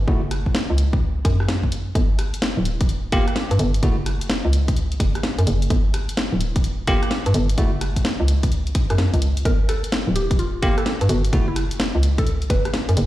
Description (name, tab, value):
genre	UK garage, two-step garage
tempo	128 BPM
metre	4/4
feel	swing 65% on 16ths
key	unclear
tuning	A4 = 440 Hz
part	hollow knocking FM bass	bass	0.0-13.1 s	D1 to G2	-20 LUFS	equal	none
part	bell-like tine electric piano	stabs	0.1-0.2, 3.1-4.0, 6.9-7.7, 10.6-11.5 s	A3 to G4	-27 LUFS	right 1 dB	low-pass filter, dub echo
part	electronic kick drum	drums	0.1-12.6 s	none	-21 LUFS	equal	none
part	house drum kit	drums	0.3-13.1 s	hi-hat, rim click, snare drum	-26 LUFS	left 1 dB	none
part	mallet-like synth pluck	melody	9.5-12.7 s	E4 to B4	-28 LUFS	equal	chorus, dub echo
room	digital ambience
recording	played on a big sound system in a bare room, large studio reverb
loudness	-18 LUFS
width	side -15 dB against mid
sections	0.0-13.1 A section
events	none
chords	0.1 F#5; 2.0 G5; 3.8 F#5; 5.7 G5; 7.6 F#5; 9.5 G5; 11.3 F#5